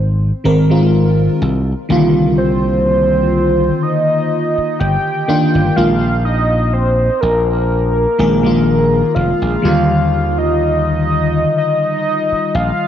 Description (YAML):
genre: vaporwave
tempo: 62 BPM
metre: 4/4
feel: swing 54% on 16ths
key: Eb major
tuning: A4 = 440 Hz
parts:
  - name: warm velvety synth lead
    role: melody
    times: 0.0-12.9 s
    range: Bb4 to G5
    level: -17 LUFS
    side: equal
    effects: chorus, tremolo, tape echo
  - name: slap bass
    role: bass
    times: 0.0-12.7 s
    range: F1 to Eb2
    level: -17 LUFS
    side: equal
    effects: tube saturation
  - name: FM electric piano with soft pad layer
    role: accompaniment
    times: 0.4-12.9 s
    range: D3 to Bb4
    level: -15 LUFS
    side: equal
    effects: analog chorus, cassette tape, analog delay
room: moderate lush hall reverb, RT60 1.7 s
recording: dreamy mix soaked in reverb, cassette tape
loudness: -12 LUFS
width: side -10 dB against mid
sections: 0.0-12.9 A section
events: none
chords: 0.0 Ab6; 1.4 Cm11; 5.8 Bb7sus4; 9.6 Ebmaj9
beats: 0.93 | 1.90 2.87 3.83 4.80 | 5.77 6.74 7.71 8.67 | 9.64 10.61 11.58 12.54